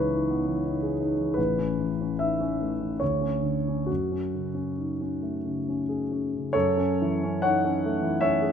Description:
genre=classical, impressionist solo piano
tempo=65-85 BPM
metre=3/4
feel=rubato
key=F# dorian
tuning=A4 = 441 Hz
part: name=clear concert grand piano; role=solo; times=0.0-8.5 s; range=A1 to F#5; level=-24 LUFS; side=equal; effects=none
room=moderate scoring stage reverb, RT60 1.9 s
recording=close, detailed microphones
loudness=-24 LUFS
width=side -8 dB against mid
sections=0.0-6.5 A section; 6.5-8.5 A section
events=none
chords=0.0 C#m9; 1.4 Aadd9; 3.0 N.C.; 3.9 F#madd9; 6.5 F#m7

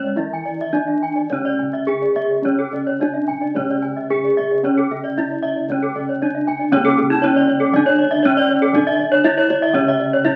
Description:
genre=Balinese gamelan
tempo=106-119 BPM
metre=4/4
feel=straight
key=C# pelog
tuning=A4 = 439 Hz
part: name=gamelan-type bronze metallophone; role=melody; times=0.0-10.4 s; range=C#4 to G#4-30c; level=-21 LUFS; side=equal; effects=none
part: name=gamelan-type bronze metallophone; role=accompaniment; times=0.0-10.4 s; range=C#3 to G#3-30c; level=-35 LUFS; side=equal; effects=none
part: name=gamelan-type bronze metallophone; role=arpeggios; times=0.0-10.4 s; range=G#4-30c to G#5-30c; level=-28 LUFS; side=equal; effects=none
part: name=gamelan-type bronze metallophone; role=arpeggios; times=0.0-10.3 s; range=E4-30c to G#5-30c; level=-23 LUFS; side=equal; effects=none
part: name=gamelan-type bossed gongs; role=bass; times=0.0-10.4 s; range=C#2 to E4-30c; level=-27 LUFS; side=equal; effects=none
part: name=kendang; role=percussion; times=0.1-10.4 s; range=none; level=-36 LUFS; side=equal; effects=none
room=wet small room reverb, RT60 0.6 s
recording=very old 78 rpm record, vinyl crackle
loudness=-18 LUFS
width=mono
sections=0.0-6.7 A section; 6.7-10.4 B section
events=none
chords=none

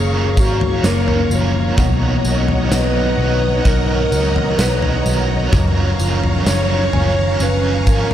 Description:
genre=dream pop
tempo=64 BPM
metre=4/4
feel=straight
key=F# major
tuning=A4 = 441 Hz
part: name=warbly nostalgic lead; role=melody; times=0.0-8.1 s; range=F#4 to C#5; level=-23 LUFS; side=equal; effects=chorus, digital delay
part: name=overdriven electric guitar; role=accompaniment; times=0.0-8.1 s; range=B2 to A#4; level=-25 LUFS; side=right 4 dB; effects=tremolo, analog chorus
part: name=string machine, violas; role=sustained chords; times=0.0-8.1 s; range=C#5 to C#6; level=-23 LUFS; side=equal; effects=ensemble chorus
part: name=mellow electric guitar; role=arpeggios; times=0.0-8.1 s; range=F#2 to D#4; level=-24 LUFS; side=left 3 dB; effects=lush chorus, digital delay
part: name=vintage muted picked electric bass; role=bass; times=0.0-8.1 s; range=F#1 to C#2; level=-19 LUFS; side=equal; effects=none
part: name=soft synth bell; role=texture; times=0.0-8.1 s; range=C#5 to G#5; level=-37 LUFS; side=equal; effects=none
part: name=huge arena drum kit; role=drums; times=0.4-8.1 s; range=kick drum, snare drum, tambourine, toms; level=-19 LUFS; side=equal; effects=none
room=light reverb, studio ambience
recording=dark, warm production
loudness=-14 LUFS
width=side -11 dB against mid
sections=0.0-8.1 A section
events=none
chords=0.0 F#maj7; 1.8 Bmaj7; 5.5 F#maj7

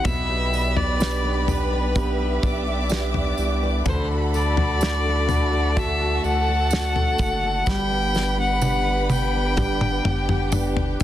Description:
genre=pop ballad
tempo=63 BPM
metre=4/4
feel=straight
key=G major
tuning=A4 = 440 Hz
part: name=rich violin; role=melody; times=0.0-10.5 s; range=B4 to G5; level=-26 LUFS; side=left 1 dB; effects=none
part: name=warm studio violin section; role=second line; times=0.0-11.0 s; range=G4 to D6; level=-30 LUFS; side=equal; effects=none
part: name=clear grand piano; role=accompaniment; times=0.0-11.0 s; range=B2 to B4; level=-29 LUFS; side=right 2 dB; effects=none
part: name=fingerpicked steel-string acoustic guitar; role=arpeggios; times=0.0-11.0 s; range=C3 to C5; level=-32 LUFS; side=left 6 dB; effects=tape echo
part: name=damped 70s drum kit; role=drums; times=0.0-11.0 s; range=kick drum, snare drum, toms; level=-25 LUFS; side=left 1 dB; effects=none
part: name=tambourine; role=percussion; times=0.0-11.0 s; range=none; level=-39 LUFS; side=right 11 dB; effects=none
part: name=warm studio string section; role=sustained chords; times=0.1-11.0 s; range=D3 to E5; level=-33 LUFS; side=right 4 dB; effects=none
part: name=saturated sub bass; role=bass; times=0.1-11.0 s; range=F#1 to D2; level=-25 LUFS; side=equal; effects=none
room=light reverb, small room ambience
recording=dense, heavily limited modern master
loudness=-19 LUFS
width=side -12 dB against mid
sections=0.0-11.0 A section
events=drum fill 7.7-11.0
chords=0.1 G/B; 3.9 D; 7.7 G

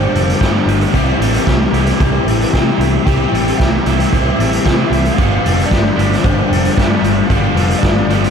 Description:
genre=rock, shoegaze and dream pop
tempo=113 BPM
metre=4/4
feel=straight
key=G mixolydian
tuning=A4 = 445 Hz
part: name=reedy FM lead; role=melody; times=0.0-8.3 s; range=C5 to G5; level=-24 LUFS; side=right 1 dB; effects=chorus, ping-pong delay
part: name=twangy electric guitar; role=arpeggios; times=0.0-8.3 s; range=G4 to A4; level=-25 LUFS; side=left 1 dB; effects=ensemble chorus, ping-pong delay
part: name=overdriven electric guitar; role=riff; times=0.0-8.3 s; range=G2 to G4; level=-20 LUFS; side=right 8 dB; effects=reverse reverb
part: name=overdriven semi-hollow guitar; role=riff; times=0.0-8.3 s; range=G2 to G4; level=-17 LUFS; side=left 8 dB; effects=lush chorus
part: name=picked electric bass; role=bass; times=0.0-8.3 s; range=F1 to C3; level=-17 LUFS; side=right 1 dB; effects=none
part: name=raw garage drum kit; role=drums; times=0.2-8.3 s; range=hi-hat, kick drum, snare drum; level=-17 LUFS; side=right 1 dB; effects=none
room=moderate huge ambient reverb, RT60 8.4 s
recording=dreamy mix soaked in reverb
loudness=-11 LUFS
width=side -7 dB against mid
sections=0.0-8.3 A section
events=none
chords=0.0 G7sus4; 0.9 C6; 5.2 G7(no3)

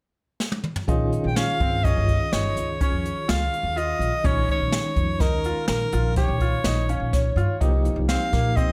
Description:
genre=progressive instrumental, band music in an uneven meter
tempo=125 BPM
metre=7/4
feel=straight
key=Bb dorian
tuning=A4 = 442 Hz
part: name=jazz brush drum kit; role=drums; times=0.4-8.7 s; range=hi-hat, kick drum, snare drum, toms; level=-27 LUFS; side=equal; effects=none
part: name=overdriven tine electric piano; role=accompaniment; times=0.9-8.7 s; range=Eb3 to F5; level=-33 LUFS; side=equal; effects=fast tremolo
part: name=bright concert grand piano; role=arpeggios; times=0.9-8.7 s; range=Bb3 to G4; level=-34 LUFS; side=equal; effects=none
part: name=upright bass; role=bass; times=0.9-8.7 s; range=G1 to Bb2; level=-27 LUFS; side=equal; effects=none
part: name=breathy soprano saxophone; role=melody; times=1.3-8.7 s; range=Bb4 to G5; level=-29 LUFS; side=equal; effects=delay
room=light reverb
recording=none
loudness=-23 LUFS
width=mono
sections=0.9-8.7 A section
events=drum fill 0.4-0.9; tine electric piano fill 6.6-7.6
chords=0.0 N.C.; 0.9 Bbm; 7.6 Cm

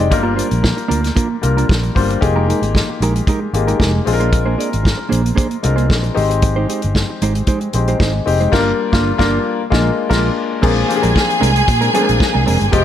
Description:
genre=disco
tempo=114 BPM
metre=4/4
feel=straight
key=unclear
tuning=A4 = 441 Hz
part: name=clear grand piano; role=accompaniment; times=0.0-12.8 s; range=F3 to D5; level=-19 LUFS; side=left 5 dB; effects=none
part: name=mellow electric guitar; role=accompaniment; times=0.0-12.8 s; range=Eb3 to D5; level=-21 LUFS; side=right 5 dB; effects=none
part: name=fingered electric bass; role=bass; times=0.0-12.8 s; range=F1 to Bb2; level=-18 LUFS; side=right 1 dB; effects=none
part: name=warm soul drum kit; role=drums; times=0.1-12.8 s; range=crash cymbal, hi-hat, kick drum, snare drum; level=-18 LUFS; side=equal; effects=none
part: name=clear studio string section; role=second line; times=10.6-12.8 s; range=G4 to Ab5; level=-17 LUFS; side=right 1 dB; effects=none
room=light reverb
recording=none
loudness=-13 LUFS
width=side -10 dB against mid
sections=0.0-10.6 A section; 10.6-12.8 B section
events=band accent 8.5-10.6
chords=0.1 Gm7; 2.2 Fm11; 4.1 Bb9; 6.2 Abmaj7; 8.5 Gm7; 9.6 Bb7; 10.6 Bb9

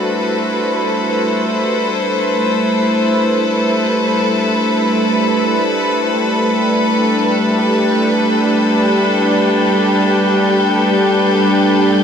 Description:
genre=ambient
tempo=free time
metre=none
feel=none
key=unclear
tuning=A4 = 440 Hz
part: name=rich chamber string section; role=sustained chords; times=0.0-12.0 s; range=A3 to C5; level=-13 LUFS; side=equal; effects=none
part: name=analog drone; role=drone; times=0.0-12.0 s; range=G3 to D4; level=-22 LUFS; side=equal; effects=chorus
part: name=wind-like tuned noise texture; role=texture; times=7.6-12.0 s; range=G3 to G5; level=-18 LUFS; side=left 2 dB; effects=built-in reverb
room=wet huge ambient reverb, RT60 7.7 s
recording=none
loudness=-12 LUFS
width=side -7 dB against mid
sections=0.0-12.0 A section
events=none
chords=0.0 Amadd9/G; 6.7 Gadd9

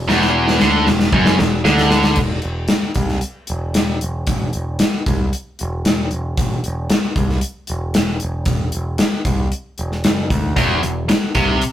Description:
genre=hard rock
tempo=114 BPM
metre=4/4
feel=straight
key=unclear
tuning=A4 = 440 Hz
part: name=tight distorted guitar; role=riff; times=0.0-2.2, 10.6-11.6 s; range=E2 to D3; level=-16 LUFS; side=equal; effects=distortion
part: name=growling picked electric bass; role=bass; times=0.0-11.6 s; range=E1 to D2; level=-21 LUFS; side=right 1 dB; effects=overdrive
part: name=gated 80s drum kit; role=drums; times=0.1-11.7 s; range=crash cymbal, hi-hat, kick drum, snare drum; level=-17 LUFS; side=left 1 dB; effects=none
room=moderate studio reverb, RT60 0.6 s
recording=rough rehearsal-room recording, tube saturation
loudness=-15 LUFS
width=side -11 dB against mid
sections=0.0-2.2 A section; 2.2-11.7 B section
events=drum fill 0.1-2.2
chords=0.0 Dadd9/E; 2.2 D7sus2/E (rootless)

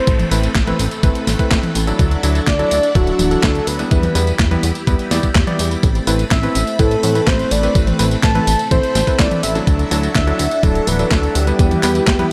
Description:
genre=italo disco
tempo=125 BPM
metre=4/4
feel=straight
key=A dorian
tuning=A4 = 438 Hz
part: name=soft octave-layered synth lead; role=melody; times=0.0-12.3 s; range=F#4 to A5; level=-22 LUFS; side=equal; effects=chorus, tape echo
part: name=string machine, full ensemble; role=sustained chords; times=0.0-12.3 s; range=A3 to B5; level=-27 LUFS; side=equal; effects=phaser, ensemble chorus
part: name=clear electric grand piano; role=stabs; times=0.0-12.3 s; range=F#3 to D5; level=-25 LUFS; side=equal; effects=none
part: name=downlifter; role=sound effects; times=0.0-2.0 s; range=none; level=-37 LUFS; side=equal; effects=none
part: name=chorused synth bass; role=bass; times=0.1-12.2 s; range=D1 to A2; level=-21 LUFS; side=equal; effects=tube saturation
part: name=clean 12-bit digital drum machine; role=drums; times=0.1-12.3 s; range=handclaps, hi-hat, snare drum, tambourine, toms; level=-23 LUFS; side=equal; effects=overdrive
part: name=electronic kick drum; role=drums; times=0.1-12.2 s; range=none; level=-18 LUFS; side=equal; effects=overdrive
room=light reverb, digital ambience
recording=dark, warm production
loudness=-16 LUFS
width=mono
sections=0.0-12.3 A section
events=none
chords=0.0 Amadd9; 2.0 Dadd9; 3.9 Em; 5.8 Amadd9; 9.7 Dadd9; 11.6 Em

